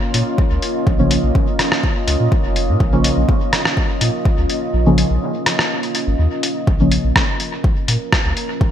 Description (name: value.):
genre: dub techno.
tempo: 124 BPM.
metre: 4/4.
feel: straight.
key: Bb minor.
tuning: A4 = 442 Hz.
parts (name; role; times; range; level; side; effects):
deep dark ambient pad; sustained chords; 0.0-8.7 s; Bb3 to Eb5; -22 LUFS; right 1 dB; chorus, built-in reverb, sidechain pumping.
soft dub sub bass; bass; 0.1-8.7 s; F1 to Bb2; -18 LUFS; equal; sidechain pumping.
lo-fi sampler-style drum kit; drums; 0.1-8.5 s; hi-hat, rim click; -20 LUFS; left 1 dB; studio reverb, gated reverb, dub echo.
electronic kick drum; drums; 0.4-8.7 s; none; -17 LUFS; equal; overdrive, studio reverb.
deep mellow chord stab; stabs; 1.0-6.9 s; Db3 to Db4; -20 LUFS; equal; chorus, phaser, sidechain pumping, dub echo.
room: light reverb, digital ambience.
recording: bright 1980s-style digital production.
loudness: -14 LUFS.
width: side -10 dB against mid.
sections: 0.0-6.7 A section; 6.7-8.7 A section.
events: kick drops out 4.7-6.7.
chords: 0.0 Bbm.